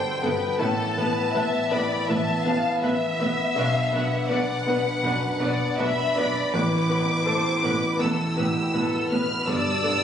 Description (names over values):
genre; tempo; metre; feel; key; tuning
cinematic; 81 BPM; 4/4; rubato; unclear; A4 = 439 Hz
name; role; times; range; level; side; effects
rich studio violin section; melody; 0.0-10.0 s; E5 to F6; -28 LUFS; left 1 dB; none
warm symphonic violin section; second line; 0.0-10.0 s; G4 to F5; -28 LUFS; left 2 dB; none
warm concert grand piano; accompaniment; 0.0-10.0 s; A1 to B4; -27 LUFS; left 1 dB; none
mellow French horn section; sustained chords; 0.0-10.0 s; B2 to A4; -31 LUFS; equal; none
warm symphonic viola section; accompaniment; 0.2-9.9 s; A3 to B4; -32 LUFS; right 1 dB; none
rich studio double bass section; bass; 0.2-9.9 s; G1 to B1; -34 LUFS; right 2 dB; none
rich symphonic cello section; bass; 0.2-9.9 s; G2 to B2; -33 LUFS; right 2 dB; none
room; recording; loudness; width
moderate scoring stage reverb, RT60 1.7 s; recorded on a phone in the room, club reverb, compression, nothing above 10.6 kHz; -21 LUFS; side -8 dB against mid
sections
0.0-10.0 A section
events
none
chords
0.0 Gadd9; 0.6 Asus2; 3.6 Bm; 6.5 Asus2; 9.5 Gadd9